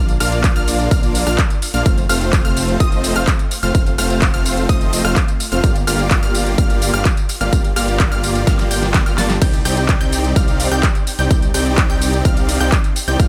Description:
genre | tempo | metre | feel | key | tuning
EDM, festival progressive house | 127 BPM | 4/4 | straight | C dorian | A4 = 441 Hz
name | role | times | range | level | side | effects
unison pluck | arpeggios | 0.0-13.3 s | Eb6 to A6 | -28 LUFS | equal | sidechain pumping, digital delay
supersaw chords | riff | 0.0-13.3 s | A3 to A5 | -23 LUFS | equal | sidechain pumping, digital delay
detuned saw bass | bass | 0.0-13.3 s | F1 to C2 | -23 LUFS | equal | chorus, sidechain pumping
big-room dance drum kit | drums | 0.1-13.3 s | crash cymbal, handclaps, hi-hat, rim click, snare drum, tambourine | -25 LUFS | equal | overdrive
electronic kick drum | drums | 0.4-13.3 s | none | -18 LUFS | equal | overdrive
room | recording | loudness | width
digital ambience | none | -16 LUFS | mono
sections
0.0-13.3 A section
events
drum fill 8.5-9.4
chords
0.0 Bb; 1.9 F; 5.6 Gm7; 9.4 Cmadd9

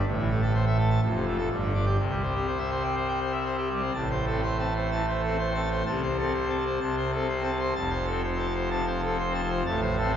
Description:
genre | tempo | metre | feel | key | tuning
classical, organ toccata | 125 BPM | 4/4 | straight | C major, A minor from 4.0 s | A4 = 441 Hz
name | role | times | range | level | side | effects
pipe organ, full organ | solo | 0.0-10.2 s | F1 to A5 | -24 LUFS | equal | none
room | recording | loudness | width
wet church reverb, RT60 2.9 s | heard from further back in the room, nothing above 8.0 kHz | -25 LUFS | side -9 dB against mid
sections
0.0-4.0 A section; 4.0-10.2 B section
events
none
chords
0.1 Am; 1.0 F; 1.5 G5; 2.0 C; 4.0 Am; 5.9 Am/C; 7.8 F; 9.7 Am

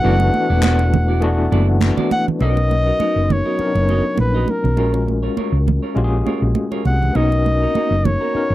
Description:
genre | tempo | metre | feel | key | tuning
lush 1970s-style soul | 101 BPM | 4/4 | swing 54% on 16ths | unclear | A4 = 440 Hz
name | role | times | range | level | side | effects
warm flugelhorn | melody | 0.0-8.5 s | A#4 to F#5 | -21 LUFS | left 1 dB | none
overdriven tine electric piano | accompaniment | 0.0-8.5 s | E3 to A#4 | -21 LUFS | left 3 dB | fast tremolo
semi-hollow electric guitar | riff | 0.0-8.5 s | A#3 to D#5 | -26 LUFS | right 5 dB | none
hollow-body short-scale fingered electric bass | bass | 0.0-8.5 s | E1 to C#2 | -17 LUFS | equal | none
large celesta | texture | 0.0-8.5 s | D#4 to F#4 | -29 LUFS | left 4 dB | none
congas | percussion | 0.2-8.2 s | none | -23 LUFS | right 5 dB | none
group handclap | percussion | 0.6-2.0 s | none | -27 LUFS | left 4 dB | none
room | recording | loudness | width
little or no reverb | dry, close 1970s-style studio recording | -15 LUFS | side -15 dB against mid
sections
0.0-2.4 A section; 2.4-8.5 B section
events
none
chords
0.0 D69; 2.4 Bmaj7; 4.8 F#maj7/A#; 7.2 Bmaj7

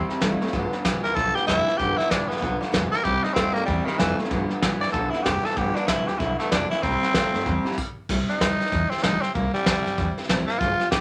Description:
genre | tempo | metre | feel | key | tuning
rockabilly | 190 BPM | 4/4 | swing 62% on 8ths | C major | A4 = 440 Hz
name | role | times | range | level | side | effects
raspy tenor saxophone | melody | 0.0-11.0 s | Eb3 to D5 | -27 LUFS | equal | none
picked steel-string acoustic guitar | accompaniment | 0.0-11.0 s | G2 to G4 | -33 LUFS | equal | none
electric guitar through a small old amp | riff | 0.0-7.8 s | G2 to A3 | -30 LUFS | equal | none
upright bass | bass | 0.0-11.0 s | F1 to G2 | -34 LUFS | equal | none
soft brush drum kit | drums | 0.1-11.0 s | crash cymbal, hi-hat, kick drum, snare drum | -29 LUFS | equal | none
room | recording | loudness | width
moderate studio reverb, RT60 0.6 s | none | -24 LUFS | mono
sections
0.0-8.1 A section; 8.1-11.0 B section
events
stop 7.8-8.1; tenor saxophone solo 8.1-11.0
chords
0.0 C; 0.5 G7; 3.1 C; 4.3 G7; 6.8 C

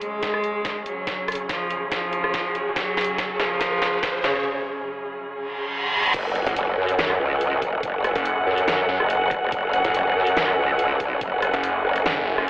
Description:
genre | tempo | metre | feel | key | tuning
heavy wobble dubstep | 142 BPM | 4/4 | swing 53% on 16ths, half-time | F# harmonic minor | A4 = 442 Hz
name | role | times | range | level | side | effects
warm cello | melody | 0.0-4.5 s | C#3 to G#3 | -26 LUFS | equal | digital delay
dark chamber string section | sustained chords | 0.0-12.5 s | F#2 to F#5 | -25 LUFS | equal | sidechain pumping, low-pass filter
dubstep drum kit | drums | 0.0-12.5 s | crash cymbal, hi-hat, rim click, snare drum | -26 LUFS | equal | overdrive, high-pass filter on hats, high-pass filter on snare, high-pass filter on cymbals, high-pass filter on room
riser, reverse cymbal and impact | sound effects | 1.9-7.8 s | none | -27 LUFS | right 1 dB | none
electronic kick drum | drums | 0.2-11.3 s | none | -36 LUFS | equal | overdrive
growl bass | bass | 6.1-12.0 s | F#1 to F#2 | -22 LUFS | equal | chorus, overdrive
snarling distorted saw bass | bass | 6.5-12.5 s | F#1 to F#2 | -24 LUFS | equal | distortion, overdrive
room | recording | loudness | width
moderate digital room reverb, RT60 0.9 s | telephone sound | -20 LUFS | side -22 dB against mid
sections
0.0-6.1 A section; 6.1-12.5 B section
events
build-up 0.0-6.1; drum fill 0.0-4.5; riser 1.9-4.5; break 4.5-6.1; reverse cymbal 5.5-6.1; drop 6.1-12.5; impact 6.1-7.8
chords
0.0 F#sus2; 6.1 F#madd9

